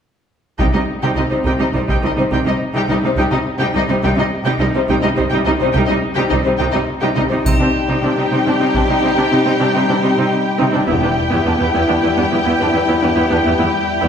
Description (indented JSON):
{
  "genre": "cinematic, epic orchestral film score",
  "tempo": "70 BPM (dotted quarters)",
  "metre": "12/8",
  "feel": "straight",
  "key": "C minor",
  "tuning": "A4 = 440 Hz",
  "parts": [
    { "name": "dark symphonic violin section", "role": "second line", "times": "0.6-14.1 s", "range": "C4 to G5", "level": "-20 LUFS", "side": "left 3 dB", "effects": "none" },
    { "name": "rich studio viola section", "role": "accompaniment", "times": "0.6-14.1 s", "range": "G3 to E4", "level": "-18 LUFS", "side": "right 1 dB", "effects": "none" },
    { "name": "clear studio cello section", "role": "bass", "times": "0.6-14.1 s", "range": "E2 to C3", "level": "-21 LUFS", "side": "right 1 dB", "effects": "none" },
    { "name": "rich symphonic double bass section", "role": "bass", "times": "0.6-11.0 s", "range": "E1 to C2", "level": "-24 LUFS", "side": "right 2 dB", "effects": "none" },
    { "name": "solo taiko drums", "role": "drums", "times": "0.6-2.2, 7.5-9.0 s", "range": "none", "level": "-22 LUFS", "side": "equal", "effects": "none" },
    { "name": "mellow French horn section", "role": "sustained chords", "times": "7.4-14.1 s", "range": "G3 to E4", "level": "-19 LUFS", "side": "left 2 dB", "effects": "none" },
    { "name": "triangle", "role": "percussion", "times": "7.5-8.6 s", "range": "none", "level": "-27 LUFS", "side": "left 1 dB", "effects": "none" }
  ],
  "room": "wet recital hall reverb, RT60 1.5 s",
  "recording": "heard from further back in the room",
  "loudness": "-14 LUFS",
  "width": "side -7 dB against mid",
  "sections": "0.6-7.5 A section; 7.5-14.1 B section",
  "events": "build-up 7.5-14.1",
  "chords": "0.6 Cm; 10.9 Em",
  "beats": "| 0.60 1.46 2.32 3.17 | 4.03 4.89 5.75 6.60 | 7.46 8.32 9.17 10.03 | 10.89 11.74 12.60 13.46"
}